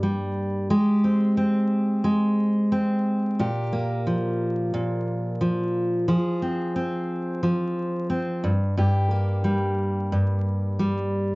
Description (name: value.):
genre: pop.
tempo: 89 BPM.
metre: 4/4.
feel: straight.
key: unclear.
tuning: A4 = 440 Hz.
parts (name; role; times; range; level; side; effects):
picked steel-string acoustic guitar; solo; 0.0-11.3 s; G2 to Ab4; -22 LUFS; equal; none.
room: wet studio reverb, RT60 0.5 s.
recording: dark, warm production, vinyl crackle, nothing above 7.7 kHz.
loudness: -22 LUFS.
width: side -24 dB against mid.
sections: 0.0-11.3 A section.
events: none.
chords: 0.0 Gm; 0.7 Abmaj7; 3.4 Bb5; 6.1 Fm; 8.4 Gm.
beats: 0.03 | 0.70 1.38 2.05 2.72 | 3.40 4.07 4.74 5.41 | 6.09 6.76 7.43 8.11 | 8.78 9.45 10.12 10.80.